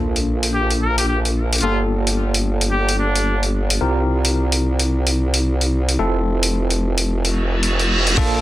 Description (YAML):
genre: glitch hop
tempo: 110 BPM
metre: 4/4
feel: swing 60% on 16ths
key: unclear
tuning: A4 = 437 Hz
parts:
  - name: bell-like tine electric piano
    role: stabs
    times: 0.0-8.4 s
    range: Bb3 to Bb4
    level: -24 LUFS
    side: right 1 dB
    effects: auto-pan, sidechain pumping, low-pass filter, tape echo
  - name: formant-sweep wobble bass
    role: bass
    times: 0.0-8.4 s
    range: F1 to C2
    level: -19 LUFS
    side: equal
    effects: chorus, tube saturation
  - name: sub drop and reverse cymbal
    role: sound effects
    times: 0.0-1.6, 7.3-8.2 s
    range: none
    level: -23 LUFS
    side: right 1 dB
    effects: none
  - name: boom bap sampler-style drum kit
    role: drums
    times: 0.2-8.4 s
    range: crash cymbal, hi-hat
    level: -21 LUFS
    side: left 1 dB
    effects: overdrive
  - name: bright trumpet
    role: melody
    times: 0.5-3.4 s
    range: D4 to Bb4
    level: -24 LUFS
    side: left 1 dB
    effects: tape echo
  - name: electronic kick drum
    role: drums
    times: 8.2-8.3 s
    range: none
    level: -19 LUFS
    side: equal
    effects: none
room: light reverb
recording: dense, heavily limited modern master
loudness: -16 LUFS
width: side -15 dB against mid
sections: 0.0-8.2 A section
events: impact 0.0-1.6; reverse cymbal 7.3-8.2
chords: 0.0 Bbmaj7; 1.6 Gm9; 3.8 C7sus4; 6.0 Fmaj7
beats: 0.00 0.54 1.09 | 1.63 2.18 2.73 3.27 | 3.82 4.36 4.91 5.45 | 6.00 6.54 7.09 7.63 | 8.18